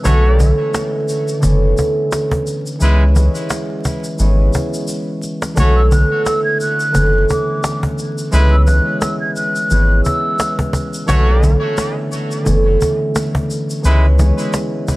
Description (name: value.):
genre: hip hop, boom-bap hip-hop.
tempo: 87 BPM.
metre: 4/4.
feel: swing 56% on 16ths.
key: B dorian.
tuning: A4 = 436 Hz.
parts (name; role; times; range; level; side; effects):
concert harp; accompaniment; 0.0-15.0 s; D3 to C#4; -18 LUFS; equal; cassette tape, high-pass filter, low-pass filter.
bright trumpet section; stabs; 0.0-14.1 s; G#3 to C#5; -23 LUFS; equal; high-pass filter, low-pass filter, tape echo.
tube shaker; percussion; 0.0-15.0 s; none; -31 LUFS; left 2 dB; none.
warm sub bass; bass; 0.1-14.3 s; F#1 to C#2; -12 LUFS; equal; none.
cajon; drums; 0.1-15.0 s; none; -21 LUFS; equal; none.
breathy mellow concert flute; melody; 5.8-10.6 s; D6 to G#6; -20 LUFS; equal; high-pass filter, low-pass filter, tape echo.
room: little or no reverb.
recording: vinyl crackle.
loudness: -13 LUFS.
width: side -19 dB against mid.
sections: 0.0-15.0 A section.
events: drum fill 4.9-5.6.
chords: 0.1 Bm11; 2.8 C#m7; 5.6 Bm11; 8.3 C#m7; 11.1 Bm11; 13.8 C#m7.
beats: | 0.05 0.74 1.43 2.12 | 2.81 3.50 4.19 4.88 | 5.57 6.26 6.95 7.64 | 8.33 9.02 9.71 10.40 | 11.09 11.78 12.47 13.16 | 13.85 14.54.